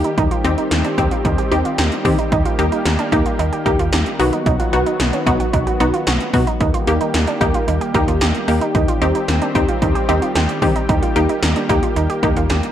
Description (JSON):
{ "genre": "synth-pop", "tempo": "112 BPM", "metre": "4/4", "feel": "straight", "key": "Eb major", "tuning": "A4 = 441 Hz", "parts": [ { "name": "wide unison pluck", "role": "accompaniment", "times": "0.0-12.4 s", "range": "Bb3 to G4", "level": "-20 LUFS", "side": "left 1 dB", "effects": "none" }, { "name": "lush unison pad", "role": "sustained chords", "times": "0.0-12.7 s", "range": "Eb3 to G4", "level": "-23 LUFS", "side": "left 1 dB", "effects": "chorus" }, { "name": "analog pluck", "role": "arpeggios", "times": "0.0-12.7 s", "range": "Db4 to G4", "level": "-24 LUFS", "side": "right 6 dB", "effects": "chorus, tape echo" }, { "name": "slap-like FM bass", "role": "bass", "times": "0.0-12.6 s", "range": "B1 to Eb3", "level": "-20 LUFS", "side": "equal", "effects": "none" }, { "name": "80s electronic pad drums", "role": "drums", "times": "0.0-12.7 s", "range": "hi-hat, kick drum, snare drum", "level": "-20 LUFS", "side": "equal", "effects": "gated reverb" } ], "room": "light reverb, digital ambience", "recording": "none", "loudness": "-15 LUFS", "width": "side -10 dB against mid", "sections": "0.0-12.7 A section", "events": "none", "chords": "0.2 Cm/Eb; 2.3 Eb; 4.2 B; 6.6 Eb; 8.7 Cm/Eb; 10.9 Eb", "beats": "| 0.18 0.71 1.25 1.78 | 2.32 2.85 3.39 3.93 | 4.46 5.00 5.53 6.07 | 6.61 7.14 7.68 8.21 | 8.75 9.28 9.82 10.36 | 10.89 11.43 11.96 12.50" }